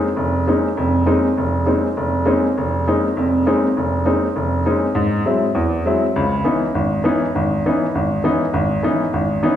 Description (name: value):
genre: jazz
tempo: 201 BPM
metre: 4/4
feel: swing 63% on 8ths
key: Bb minor, C# minor from 6.2 s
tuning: A4 = 439 Hz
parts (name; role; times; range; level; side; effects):
- clear baby grand piano; solo; 0.0-9.6 s; F1 to E4; -16 LUFS; equal; none
room: wet recital hall reverb, RT60 1.4 s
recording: recorded in a church or concert hall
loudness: -16 LUFS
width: side -10 dB against mid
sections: 0.0-6.2 A section; 6.2-9.6 B section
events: none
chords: 0.0 Bbm11; 5.0 Abaug7; 6.2 C#m9